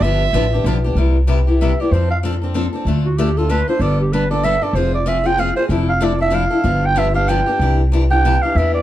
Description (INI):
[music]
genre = acoustic string swing (jazz manouche)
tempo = 190 BPM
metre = 3/4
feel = swing 59% on 8ths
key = C major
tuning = A4 = 439 Hz
[part]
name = warm violin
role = second line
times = 0.0-0.6 s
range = E5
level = -21 LUFS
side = right 7 dB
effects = none
[part]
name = picked steel-string acoustic guitar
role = accompaniment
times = 0.0-8.8 s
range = C3 to A4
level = -20 LUFS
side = left 4 dB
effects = none
[part]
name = upright bass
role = bass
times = 0.0-8.8 s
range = F1 to F2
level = -17 LUFS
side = equal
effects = none
[part]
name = growling clarinet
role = melody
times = 1.6-8.8 s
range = F#4 to G5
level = -19 LUFS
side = right 3 dB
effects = none
[sound]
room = light reverb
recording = dark, warm production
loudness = -14 LUFS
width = side -13 dB against mid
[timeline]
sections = 1.0-8.6 A section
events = clarinet solo 1.0-8.8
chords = 0.0 G7; 1.0 Cmaj7; 1.9 F6; 2.9 Dm; 3.8 Gadd9; 4.8 Fm; 5.7 Dmadd9/F; 6.7 G7; 7.6 Cadd9